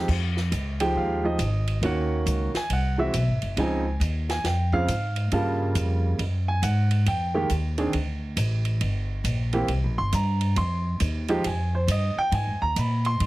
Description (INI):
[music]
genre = jazz, small-group swing and bop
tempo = 137 BPM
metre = 4/4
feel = swing 65% on 8ths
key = F minor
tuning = A4 = 438 Hz
[part]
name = warm baby grand piano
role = accompaniment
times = 0.0-13.3 s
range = Db3 to C6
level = -26 LUFS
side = right 2 dB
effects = none
[part]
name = upright bass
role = bass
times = 0.0-13.3 s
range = Gb1 to Bb2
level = -24 LUFS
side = equal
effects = none
[part]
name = compact cocktail drum kit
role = drums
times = 0.1-13.3 s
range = crash cymbal, hi-hat, kick drum, ride cymbal, snare drum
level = -34 LUFS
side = right 2 dB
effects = none
[sound]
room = little or no reverb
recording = heavily compressed radio sound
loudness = -22 LUFS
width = side -18 dB against mid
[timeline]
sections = 0.1-13.3 A section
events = none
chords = 0.1 Fm9; 1.8 Ebm7; 2.7 Ab7alt; 3.6 Dbmaj9; 5.3 Gm7b5; 6.2 Gbsus2; 7.1 Fm11; 7.9 D5; 8.8 Gmadd11; 9.7 C5; 10.6 Fm9